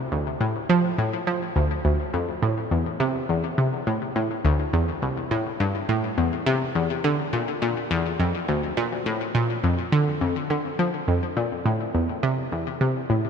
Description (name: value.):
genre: ambient.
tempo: 104 BPM.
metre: 4/4.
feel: straight.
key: A phrygian.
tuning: A4 = 442 Hz.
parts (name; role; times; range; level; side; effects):
analog pluck; solo; 0.0-13.3 s; C2 to F3; -22 LUFS; equal; chorus, ping-pong delay.
room: moderate huge ambient reverb, RT60 7.9 s.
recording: none.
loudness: -22 LUFS.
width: side -6 dB against mid.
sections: 0.0-11.7 A section; 11.7-13.3 B section.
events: none.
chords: none.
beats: | 0.12 0.69 1.27 1.85 | 2.42 3.00 3.58 4.16 | 4.73 5.31 5.89 6.46 | 7.04 7.62 8.19 8.77 | 9.35 9.93 10.50 11.08 | 11.66 12.23 12.81.